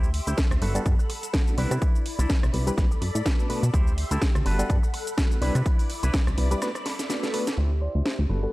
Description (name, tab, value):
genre	filtered disco house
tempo	125 BPM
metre	4/4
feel	swing 56% on 16ths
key	D mixolydian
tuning	A4 = 439 Hz
part	phased string machine	sustained chords	0.0-8.5 s	E4 to C6	-36 LUFS	equal	ensemble chorus, phaser, sidechain pumping, low-pass filter
part	electric guitar with an envelope filter	riff	0.0-8.5 s	D4 to D5	-36 LUFS	right 1 dB	sidechain pumping, low-pass filter
part	plucky analog bass	bass	0.0-8.5 s	G1 to C3	-24 LUFS	equal	sidechain pumping, low-pass filter
part	house drum kit	drums	0.0-8.2 s	hi-hat, rim click, shaker, snare drum	-31 LUFS	equal	overdrive, sidechain pumping on perc, sidechain pumping on hats
part	tambourine	percussion	0.0-7.6 s	none	-55 LUFS	equal	none
part	reed electric piano	accompaniment	0.4-8.5 s	G3 to C5	-31 LUFS	equal	fast tremolo, phaser, sidechain pumping, low-pass filter
part	electronic kick drum	drums	0.4-6.2 s	none	-23 LUFS	equal	overdrive
part	analog synth brass	melody	7.8-8.5 s	A4 to D5	-35 LUFS	equal	chorus, cassette tape, sidechain pumping, low-pass filter
room	little or no reverb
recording	dry, gritty hardware recording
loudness	-22 LUFS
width	side -19 dB against mid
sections	0.0-7.6 A section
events	break 6.6-7.6; drum fill 6.9-7.6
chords	0.0 D9sus4; 0.6 Gmaj9; 1.6 Cmaj9; 2.8 Bm7; 3.7 D9sus4; 4.5 Gmaj9; 5.4 Cmaj9; 6.6 Bm7; 7.6 D9sus4